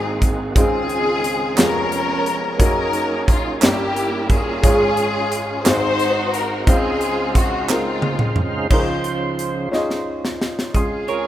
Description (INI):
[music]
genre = slow gospel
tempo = 59 BPM (dotted quarters)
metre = 6/8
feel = straight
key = Db major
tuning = A4 = 441 Hz
[part]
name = warm studio string section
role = melody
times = 0.0-11.3 s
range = Ab3 to C5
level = -21 LUFS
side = left 1 dB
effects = tape echo
[part]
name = warm upright piano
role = accompaniment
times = 0.0-11.3 s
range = F1 to C6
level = -23 LUFS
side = left 1 dB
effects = none
[part]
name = percussive tonewheel organ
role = sustained chords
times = 0.0-11.3 s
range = Db3 to F5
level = -27 LUFS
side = right 3 dB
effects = fast rotary speaker, overdrive
[part]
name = modern studio drum kit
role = drums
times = 0.2-11.2 s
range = crash cymbal, hi-hat, kick drum, snare drum, toms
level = -18 LUFS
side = equal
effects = none
[part]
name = group handclap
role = percussion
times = 1.6-8.0 s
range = none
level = -24 LUFS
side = right 7 dB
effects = none
[part]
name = clear brass ensemble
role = sustained chords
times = 8.7-11.3 s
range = Db3 to C5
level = -30 LUFS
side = right 1 dB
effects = stereo widening
[part]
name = clean electric guitar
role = second line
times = 11.1-11.3 s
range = Bb4 to Db5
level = -20 LUFS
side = right 7 dB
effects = none
[sound]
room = light reverb, small room ambience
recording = rough home demo mix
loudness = -16 LUFS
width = side -12 dB against mid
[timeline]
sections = 0.0-8.7 A section; 8.7-10.7 B section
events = drum fill 7.7-8.7, 9.7-10.7; tonewheel organ solo 8.7-10.7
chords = 0.0 Ab9; 0.6 Dbmaj9; 1.6 Db7/F; 2.6 Gb69; 3.6 Gdim7; 4.6 Db/Ab; 5.7 Ab7; 6.7 Dbmaj9